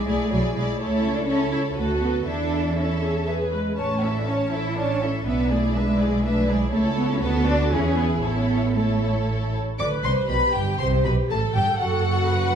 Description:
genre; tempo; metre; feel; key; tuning
quick classical-period movement for string orchestra; 121 BPM; 3/4; rubato; A major; A4 = 440 Hz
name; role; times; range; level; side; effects
warm studio violin section; melody; 0.0-12.6 s; B4 to D6; -29 LUFS; left 2 dB; none
rich studio violin section; second line; 0.0-12.6 s; F#4 to D5; -28 LUFS; equal; none
rich studio viola section; accompaniment; 0.0-12.6 s; C#4 to B4; -30 LUFS; equal; none
rich studio cello section; bass; 0.0-12.6 s; F#2 to E4; -25 LUFS; right 1 dB; none
rich studio double bass section; bass; 0.1-12.6 s; F#1 to E2; -25 LUFS; right 2 dB; none
room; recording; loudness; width
moderate scoring stage reverb, RT60 1.8 s; studio reverb; -20 LUFS; side -8 dB against mid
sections
0.0-9.8 A section; 9.8-12.6 B section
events
none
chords
0.0 E7/B; 0.8 A/C#; 1.8 Bm7/D; 2.3 A/E; 3.3 E; 3.8 A; 5.3 E7/B; 6.7 A/C#; 7.2 Bm7/D; 7.7 E; 8.2 A; 9.8 G; 11.3 F#m

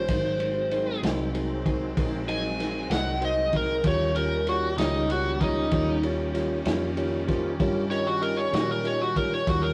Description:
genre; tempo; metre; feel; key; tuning
slow blues; 64 BPM (dotted quarters); 12/8; straight; Eb mixolydian; A4 = 442 Hz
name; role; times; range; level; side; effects
overdriven slide guitar; second line; 0.0-9.7 s; Eb4 to Ab5; -29 LUFS; equal; none
mellow tonewheel organ; sustained chords; 0.0-9.7 s; G3 to Bb4; -41 LUFS; equal; none
sweeping resonant pad; sustained chords; 0.0-9.7 s; Eb3 to Db4; -38 LUFS; equal; chorus
vintage muted fingered electric bass; bass; 0.0-9.7 s; Ab1 to Bb2; -34 LUFS; equal; none
bell-like tine electric piano; accompaniment; 0.1-9.7 s; Eb4 to Eb5; -33 LUFS; equal; none
vintage drum kit; drums; 0.1-9.6 s; kick drum, ride cymbal, snare drum; -33 LUFS; equal; none
room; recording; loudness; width
moderate studio reverb, RT60 0.6 s; rough rehearsal-room recording; -26 LUFS; mono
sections
0.0-9.7 A section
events
electric slide guitar solo 0.0-9.7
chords
0.1 Ab7; 3.8 Eb7

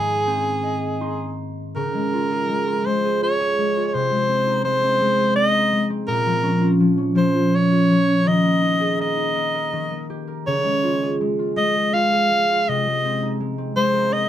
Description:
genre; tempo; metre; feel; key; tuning
children's music, lullaby; 82 BPM; 3/4; rubato; Ab major; A4 = 442 Hz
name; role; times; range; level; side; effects
bright soprano saxophone; melody; 0.0-14.3 s; Ab4 to F5; -20 LUFS; equal; none
concert harp; accompaniment; 0.0-14.3 s; Ab2 to C6; -21 LUFS; equal; none
room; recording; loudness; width
moderate small room reverb, RT60 0.5 s; band playing live in one room; -18 LUFS; side -11 dB against mid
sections
0.0-1.7 A section; 1.7-14.3 B section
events
harp fill 0.3-1.7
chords
0.0 Ab; 1.7 Db; 3.9 Ab/C; 6.1 Bbm; 8.3 Ebsus4; 9.7 Eb; 10.5 Db; 12.7 Abadd9/C

